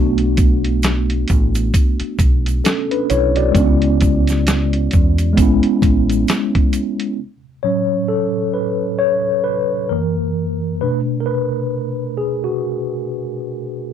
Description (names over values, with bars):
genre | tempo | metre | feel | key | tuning
lo-fi hip hop | 66 BPM | 4/4 | swing 59% on 16ths | A major | A4 = 441 Hz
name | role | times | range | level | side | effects
mellow tine electric piano | accompaniment | 0.0-13.9 s | F#2 to D5 | -18 LUFS | equal | medium stereo tremolo, low-pass filter
deep dub fingered electric bass | bass | 0.0-6.2 s | A1 to E2 | -18 LUFS | equal | none
dusty soul sampler-style drum kit | drums | 0.2-7.2 s | hi-hat, kick drum, snare drum | -16 LUFS | equal | none
egg shaker | percussion | 0.4-7.0 s | none | -35 LUFS | right 8 dB | none
room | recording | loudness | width
light reverb | none | -15 LUFS | side -9 dB against mid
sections
0.0-7.2 A section; 7.2-13.9 B section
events
tine electric piano solo 7.2-13.9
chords
0.0 Bm11; 3.5 C#m7; 5.4 Amaj9; 7.2 A6; 9.9 F#7; 10.8 Bm7